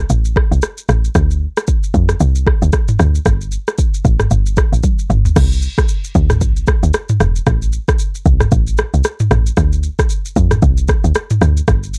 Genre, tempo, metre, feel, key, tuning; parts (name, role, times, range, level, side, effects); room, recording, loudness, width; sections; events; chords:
afrobeats; 114 BPM; 4/4; swing 58% on 16ths; D minor; A4 = 441 Hz
woody log drum bass; bass; 0.0-12.0 s; E1 to F2; -16 LUFS; equal
afro-pop drum kit; drums; 0.1-12.0 s; crash cymbal, kick drum, rim click, shaker, toms; -17 LUFS; equal
little or no reverb; dark, warm production; -15 LUFS; mono
0.0-5.4 A section; 5.4-12.0 B section
drum fill 4.8-5.4